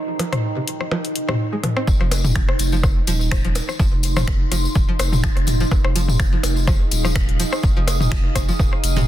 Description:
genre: minimal techno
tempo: 125 BPM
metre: 4/4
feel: swing 54% on 16ths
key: F minor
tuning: A4 = 440 Hz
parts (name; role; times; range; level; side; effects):
- deep dark ambient pad; texture; 0.0-9.1 s; Eb4 to Eb6; -27 LUFS; right 2 dB; chorus, built-in reverb, sidechain pumping
- pulsing gated texture; texture; 0.0-1.9 s; Eb5; -39 LUFS; right 6 dB; none
- string-like resonator pluck; riff; 0.2-9.0 s; C3 to C4; -29 LUFS; equal; chorus, sidechain pumping, ping-pong delay
- punchy analog drum machine; drums; 0.2-8.9 s; finger snaps, hi-hat; -29 LUFS; left 3 dB; overdrive, soft clipping on snare
- minimal click drum kit; percussion; 0.2-9.1 s; percussion blips, rim click, toms; -25 LUFS; left 2 dB; soft clipping on snare, digital delay
- saturated sub bass; bass; 1.9-9.1 s; Eb1 to F1; -22 LUFS; equal; sidechain pumping
- electronic kick drum; drums; 1.9-8.7 s; none; -19 LUFS; equal; overdrive
- tambourine; percussion; 1.9-9.1 s; none; -30 LUFS; left 4 dB; none
room: little or no reverb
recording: dense, heavily limited modern master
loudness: -17 LUFS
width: side -13 dB against mid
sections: 0.0-1.9 A section; 1.9-9.1 B section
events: drop 1.9-9.1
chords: 0.0 Fm7 (rootless); 1.9 Fm7

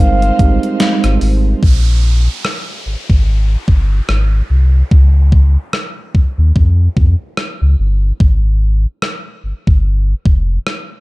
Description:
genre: contemporary R&B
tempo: 73 BPM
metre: 4/4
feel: swing 58% on 16ths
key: F minor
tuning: A4 = 440 Hz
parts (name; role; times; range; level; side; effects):
- mellow horn-like synth lead; melody; 0.0-1.2 s; F5; -19 LUFS; right 1 dB; chorus, tape echo
- mellow tine electric piano; accompaniment; 0.0-1.7 s; G3 to Bb4; -18 LUFS; right 4 dB; medium stereo tremolo
- warm studio string section; sustained chords; 0.0-1.6 s; F3 to C5; -27 LUFS; right 4 dB; sidechain pumping
- sub bass with octave; bass; 0.0-10.6 s; F1 to F2; -11 LUFS; equal; none
- gated 80s digital drum machine; drums; 0.2-10.9 s; hi-hat, kick drum, rim click, snare drum; -12 LUFS; equal; gated reverb, gated reverb snare
- downlifter; sound effects; 1.6-8.2 s; none; -30 LUFS; right 2 dB; none
room: little or no reverb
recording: dark, warm production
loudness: -11 LUFS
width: side -22 dB against mid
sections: 0.0-1.6 A section; 1.6-11.0 B section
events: none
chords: 0.0 Fm9; 1.6 Gm; 4.1 Ab; 4.9 Dbadd9; 8.2 Fmadd9

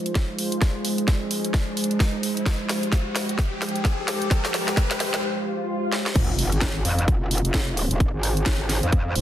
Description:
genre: bass house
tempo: 130 BPM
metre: 4/4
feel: swing 59% on 16ths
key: F minor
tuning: A4 = 440 Hz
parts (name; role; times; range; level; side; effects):
- sweeping resonant pad; sustained chords; 0.0-9.2 s; Ab3 to C5; -30 LUFS; right 1 dB; chorus, sidechain pumping
- riser, swell and impact; sound effects; 0.9-8.0 s; none; -33 LUFS; left 1 dB; none
- warbly tape-like pad; texture; 0.0-9.2 s; F3 to C5; -31 LUFS; equal; chorus, built-in reverb, sidechain pumping
- garage drum kit; drums; 0.1-9.2 s; crash cymbal, hi-hat, snare drum; -27 LUFS; equal; high-pass filter on snare, high-pass filter on hats, high-pass filter on cymbals
- electronic kick drum; drums; 0.2-9.0 s; none; -22 LUFS; equal; none
- metallic wobble bass; bass; 6.2-9.2 s; Eb1 to F2; -24 LUFS; equal; chorus, overdrive, sidechain pumping
room: light reverb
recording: dense, heavily limited modern master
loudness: -21 LUFS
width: side -12 dB against mid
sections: 0.0-6.2 A section; 6.2-9.2 B section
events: build-up 0.0-6.2; drum fill 0.0-5.2, 5.9; riser 0.9-5.2; break 5.2-6.2; swell 5.2-6.2; drop 6.2-9.2; impact 6.2-8.0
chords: 0.0 Fm

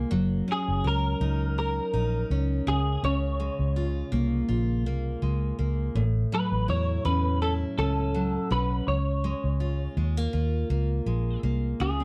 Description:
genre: indie pop, bedroom pop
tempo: 82 BPM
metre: 4/4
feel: swing 55% on 16ths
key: Db major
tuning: A4 = 439 Hz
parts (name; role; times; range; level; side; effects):
- picked steel-string acoustic guitar; accompaniment; 0.0-12.0 s; A2 to Bb4; -33 LUFS; equal; lush chorus, vibrato effect
- vintage muted fingered electric bass; bass; 0.0-12.0 s; Gb1 to E2; -29 LUFS; equal; none
- semi-hollow electric guitar; melody; 0.5-12.0 s; Ab4 to Db5; -33 LUFS; equal; ensemble chorus, slapback echo, plate reverb
room: light reverb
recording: dark, warm production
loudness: -27 LUFS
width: mono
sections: 0.0-11.8 A section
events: none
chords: 0.1 Gb6; 2.7 Db6; 6.0 A6; 8.9 Db6

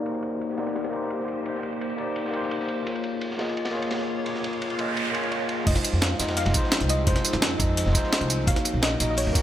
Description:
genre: liquid drum and bass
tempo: 171 BPM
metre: 4/4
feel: straight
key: F minor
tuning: A4 = 440 Hz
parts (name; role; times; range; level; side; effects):
- overdriven tine electric piano; accompaniment; 0.0-9.4 s; Ab3 to Eb5; -28 LUFS; left 1 dB; dub echo
- glassy FM pad; sustained chords; 0.0-9.4 s; F3 to Db5; -33 LUFS; left 2 dB; ensemble chorus, built-in reverb, sidechain pumping
- crunchy breakbeat drum kit; drums; 0.1-9.4 s; hi-hat, ride cymbal, snare drum; -35 LUFS; equal; high-pass filter on cymbals, studio reverb, high-pass filter on hats, high-pass filter on snare, high-pass filter on room
- noise sweep; sound effects; 4.6-5.7 s; none; -32 LUFS; right 5 dB; none
- soft round pluck; melody; 5.3-9.4 s; C5 to F5; -32 LUFS; left 1 dB; analog chorus, dub echo
- upright bass; bass; 5.7-9.3 s; F1 to F2; -26 LUFS; equal; none
- breakbeat sampler-style drum kit; drums; 5.7-9.4 s; crash cymbal, hi-hat, snare drum, tambourine; -26 LUFS; right 1 dB; studio reverb
- electronic kick drum; drums; 5.7-9.4 s; none; -25 LUFS; equal; studio reverb
room: light reverb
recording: low-pass filter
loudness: -23 LUFS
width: side -11 dB against mid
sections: 0.0-5.7 A section; 5.7-9.4 B section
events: filter sweep on ambient pad 0.0-5.7; filter sweep 0.0-5.7; noise sweep 4.6-5.7; drop 5.7-9.4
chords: 0.0 Cm7; 2.9 Bbm7; 5.7 Fm7; 8.5 Ebm7

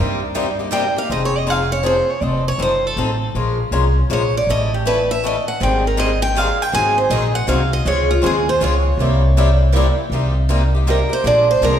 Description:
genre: acoustic string swing (jazz manouche)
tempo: 160 BPM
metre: 3/4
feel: swing 63% on 8ths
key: F minor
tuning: A4 = 440 Hz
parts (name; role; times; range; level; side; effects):
- picked steel-string acoustic guitar; melody; 0.0-11.8 s; F4 to Ab5; -19 LUFS; right 2 dB; none
- picked swing-style acoustic guitar; accompaniment; 0.0-11.7 s; C3 to Bb4; -22 LUFS; left 4 dB; none
- picked swing-style acoustic guitar; accompaniment; 0.0-0.8, 5.6-11.7 s; C3 to Ab4; -25 LUFS; right 4 dB; none
- upright bass; bass; 0.0-11.8 s; F1 to G2; -18 LUFS; equal; none
room: wet recital hall reverb, RT60 1.6 s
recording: recorded in a church or concert hall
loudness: -15 LUFS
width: side -9 dB against mid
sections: 0.0-1.1 A section; 1.1-10.1 A section; 10.1-11.8 A section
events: steel-string acoustic guitar solo 0.0-10.1, 10.1-11.8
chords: 0.0 Cm7; 1.1 Fm7; 2.2 F7b9; 3.4 Bbm7; 4.5 A7; 5.6 Abmaj7; 6.7 Ab9; 7.9 Dbmaj9; 9.0 C7b9; 10.1 Cm7; 11.2 Bb7

